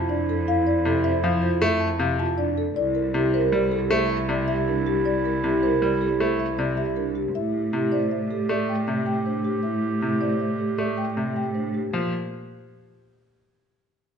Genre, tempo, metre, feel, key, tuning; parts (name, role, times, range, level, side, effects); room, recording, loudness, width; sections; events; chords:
classical, minimalist pattern music; 157 BPM; 6/4; straight; Bb lydian; A4 = 440 Hz
marimba with soft mallets; melody; 0.0-12.1 s; G4 to A5; -28 LUFS; left 10 dB
clear clarinet; second line; 0.0-11.7 s; E4 to G4; -30 LUFS; right 2 dB
vibraphone with soft mallets; arpeggios; 0.0-12.1 s; D4 to C5; -27 LUFS; right 7 dB
clear cello; bass; 0.0-12.1 s; C2 to Bb2; -28 LUFS; right 2 dB
bright grand piano; accompaniment; 0.9-12.1 s; C3 to A3; -27 LUFS; left 1 dB
wet recital hall reverb, RT60 1.5 s; nothing above 10.4 kHz; -21 LUFS; side -7 dB against mid
0.0-11.9 A section; 11.9-14.2 B section
0.0 Fmaj7; 2.8 C9; 7.3 Am7; 11.9 Bb5